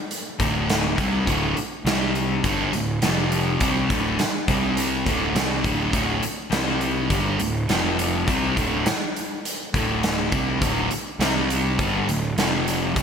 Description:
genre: hard rock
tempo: 103 BPM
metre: 4/4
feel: straight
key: D minor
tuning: A4 = 440 Hz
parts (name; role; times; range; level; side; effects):
- big rock drum kit; drums; 0.1-13.0 s; hi-hat, kick drum, snare drum; -25 LUFS; equal; gated reverb
- crunchy overdriven guitar; riff; 0.4-13.0 s; D2 to C4; -26 LUFS; left 9 dB; wide subtle chorus
- sludgy distorted guitar; riff; 0.4-13.0 s; D2 to C4; -26 LUFS; right 8 dB; overdrive
- fuzz picked electric bass; bass; 0.4-13.0 s; D1 to C2; -28 LUFS; equal; overdrive
room: moderate plate reverb, RT60 2.8 s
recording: bright 1980s-style digital production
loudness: -20 LUFS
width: side -7 dB against mid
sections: 0.0-13.0 A section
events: none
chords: 0.0 D5; 1.9 C5; 2.4 D5; 3.0 F5; 3.6 D5; 4.5 C5; 5.1 D5; 6.5 C5; 7.1 D5; 7.7 F5; 8.3 D5; 11.2 C5; 11.8 D5; 12.4 F5

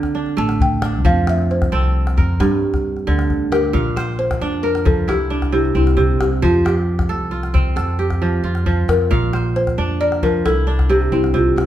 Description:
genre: west african traditional, West African string and xylophone music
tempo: 89 BPM (dotted quarters)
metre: 12/8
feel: straight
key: F major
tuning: A4 = 440 Hz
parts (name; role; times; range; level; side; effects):
- kora; arpeggios; 0.0-11.7 s; G2 to F5; -20 LUFS; right 4 dB; none
- calabash; percussion; 0.0-11.7 s; none; -22 LUFS; left 1 dB; none
- balafon; melody; 0.4-11.7 s; E4 to A5; -20 LUFS; left 3 dB; none
- upright bass; bass; 0.4-11.7 s; A1 to G2; -20 LUFS; equal; none
room: wet large studio reverb, RT60 1.1 s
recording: band playing live in one room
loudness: -15 LUFS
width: side -12 dB against mid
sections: 0.0-3.7 A section; 3.7-11.7 B section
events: balafon solo 0.0-3.7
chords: 0.0 D5; 1.0 F; 2.4 Gm; 3.7 Bb; 5.1 C; 6.4 F; 9.1 Bb; 10.4 C

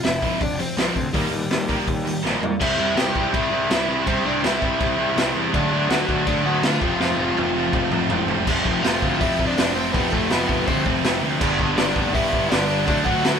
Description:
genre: punk rock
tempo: 164 BPM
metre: 4/4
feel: straight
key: unclear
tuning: A4 = 441 Hz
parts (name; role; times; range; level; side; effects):
- overdriven semi-hollow guitar; melody; 0.0-13.4 s; G3 to G5; -25 LUFS; left 2 dB; none
- crunchy overdriven guitar; riff; 0.0-13.4 s; F2 to E4; -26 LUFS; left 5 dB; none
- distorted electric guitar; riff; 0.0-13.4 s; F2 to E4; -26 LUFS; right 9 dB; overdrive
- fuzz picked electric bass; bass; 0.0-13.4 s; F1 to Bb2; -28 LUFS; equal; overdrive
- raw garage drum kit; drums; 0.0-13.3 s; crash cymbal, hi-hat, kick drum, snare drum, toms; -23 LUFS; equal; none
- distorted electric guitar; riff; 2.6-13.4 s; F2 to D4; -29 LUFS; right 1 dB; none
room: light reverb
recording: band playing live in one room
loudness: -18 LUFS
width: side -7 dB against mid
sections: 0.0-2.6 A section; 2.6-8.5 B section; 8.5-13.4 C section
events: drum fill 2.2-2.6, 7.0-8.5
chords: 0.0 F5; 1.1 Eb; 2.6 C; 5.5 D; 6.8 F; 11.4 G; 12.9 D

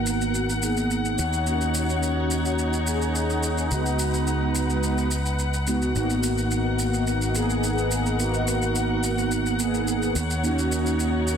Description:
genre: nu-disco, nu disco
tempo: 107 BPM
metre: 4/4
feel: straight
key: G# minor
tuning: A4 = 444 Hz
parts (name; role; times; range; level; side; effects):
- mellow synth brass; accompaniment; 0.0-11.4 s; G#3 to G#4; -25 LUFS; right 1 dB; chorus, phaser, cassette tape, analog delay
- muted chamber string section; sustained chords; 0.0-11.4 s; D#4 to F#5; -29 LUFS; left 2 dB; low-pass filter
- picked electric bass with an envelope filter; bass; 0.0-11.4 s; G#1 to D#2; -26 LUFS; equal; none
- shaker; drums; 0.1-11.4 s; none; -32 LUFS; equal; overdrive
room: moderate plate reverb, RT60 1.6 s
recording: dense, heavily limited modern master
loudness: -22 LUFS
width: side -7 dB against mid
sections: 0.0-11.4 A section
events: filter sweep on analog polysynth 0.0-11.4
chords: 0.0 G#m9; 1.2 D#m7; 3.7 C#9sus4; 6.0 G#m9; 10.2 D#m7

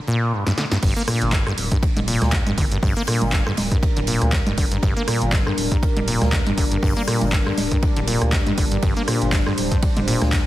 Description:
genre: acid house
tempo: 120 BPM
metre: 4/4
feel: swing 56% on 16ths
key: G minor pentatonic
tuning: A4 = 440 Hz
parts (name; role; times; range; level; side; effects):
- acid bass, saw; riff; 0.1-10.4 s; G2 to Bb3; -23 LUFS; equal; tape echo
- punchy analog drum machine; drums; 0.5-10.4 s; congas, crash cymbal, handclaps, hi-hat, ride cymbal, rim click, snare drum; -25 LUFS; right 1 dB; none
- warm analog pad; sustained chords; 0.8-10.5 s; G3 to C5; -27 LUFS; equal; chorus, sidechain pumping
- round analog bass; bass; 0.8-10.4 s; D1 to D2; -25 LUFS; equal; sidechain pumping
- electronic kick drum; drums; 0.8-10.4 s; none; -21 LUFS; equal; none
- huge arena drum kit; drums; 0.8-10.5 s; hi-hat, ride cymbal, snare drum; -36 LUFS; right 2 dB; none
room: light reverb, studio ambience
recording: heavily compressed radio sound, multiband compression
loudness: -18 LUFS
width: side -15 dB against mid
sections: 0.8-10.5 A section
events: break 0.0-0.8; drum fill 0.5-0.8; drop 0.8-10.5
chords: 0.0 Gm

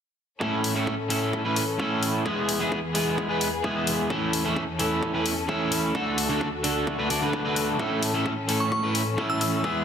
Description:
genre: EDM, festival progressive house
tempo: 130 BPM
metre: 4/4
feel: straight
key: A major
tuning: A4 = 439 Hz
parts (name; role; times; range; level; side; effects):
- electric guitar at the edge of break-up; accompaniment; 0.4-9.8 s; A2 to D5; -25 LUFS; right 1 dB; wide subtle chorus, sidechain pumping, ping-pong delay
- warm studio string section; sustained chords; 0.4-9.8 s; D2 to A4; -30 LUFS; left 2 dB; sidechain pumping
- electronic kick drum; drums; 0.4-9.7 s; none; -33 LUFS; equal; high-pass filter on kick
- electronic hi-hat; drums; 0.6-9.5 s; none; -30 LUFS; left 4 dB; overdrive
- glassy synth bell; melody; 8.6-9.5 s; C#6 to E6; -28 LUFS; left 1 dB; chorus, ping-pong delay
room: moderate digital room reverb, RT60 1.2 s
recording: heavily compressed radio sound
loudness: -23 LUFS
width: side -8 dB against mid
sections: 0.4-9.8 A section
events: none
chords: 0.4 A; 2.3 E; 4.1 A/E; 5.9 D; 7.8 A

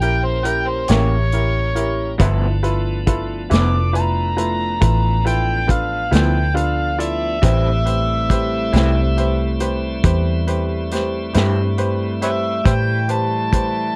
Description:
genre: slow blues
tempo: 46 BPM (dotted quarters)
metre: 12/8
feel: straight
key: unclear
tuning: A4 = 441 Hz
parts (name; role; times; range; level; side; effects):
- overdriven harmonica; second line; 0.0-14.0 s; B4 to D6; -24 LUFS; equal; none
- bright grand piano; accompaniment; 0.0-13.9 s; A3 to D5; -27 LUFS; equal; none
- tonewheel organ; sustained chords; 0.0-14.0 s; E3 to G4; -31 LUFS; equal; slow rotary speaker, overdrive
- vintage muted fingered electric bass; bass; 0.0-13.9 s; F1 to A2; -22 LUFS; equal; none
- vintage drum kit; drums; 0.0-13.7 s; hi-hat, kick drum, snare drum; -21 LUFS; equal; none
- electric guitar through a small old amp; accompaniment; 0.9-11.6 s; G2 to G4; -26 LUFS; equal; tremolo
- warm woodwind section; sustained chords; 7.4-14.0 s; G3 to A3; -30 LUFS; equal; none
room: little or no reverb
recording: dry, close 1970s-style studio recording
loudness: -18 LUFS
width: mono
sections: 0.0-14.0 A section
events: harmonica solo 0.0-14.0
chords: 0.0 C#dim7; 2.2 G13; 7.4 Am7

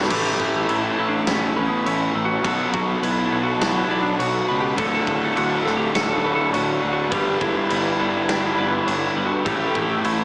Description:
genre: post-rock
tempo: 103 BPM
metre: 4/4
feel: straight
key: unclear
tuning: A4 = 440 Hz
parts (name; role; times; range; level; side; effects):
- lightly driven lead guitar; melody; 0.0-10.2 s; B3 to A4; -25 LUFS; equal; slapback echo
- analog string pad; sustained chords; 0.6-10.2 s; A4 to E6; -31 LUFS; equal; none
- twelve-string electric guitar; arpeggios; 0.0-10.2 s; D2 to F#4; -29 LUFS; equal; none
- twelve-string electric guitar; arpeggios; 0.0-10.2 s; A4 to D5; -31 LUFS; right 1 dB; none
- sludgy distorted guitar; riff; 0.0-10.2 s; D2 to B3; -23 LUFS; equal; overdrive
- fuzz fingered electric bass; bass; 0.0-10.2 s; D1 to C#2; -29 LUFS; equal; overdrive
- big rock drum kit; drums; 0.0-10.2 s; crash cymbal, kick drum, snare drum; -26 LUFS; equal; none
room: moderate lush hall reverb, RT60 1.9 s, small room ambience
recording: big arena sound, small speaker sound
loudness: -18 LUFS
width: side -29 dB against mid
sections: 0.1-10.2 A section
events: none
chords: 0.1 A7; 2.4 Bm7; 4.8 Dmaj7; 7.1 G6; 9.5 A7

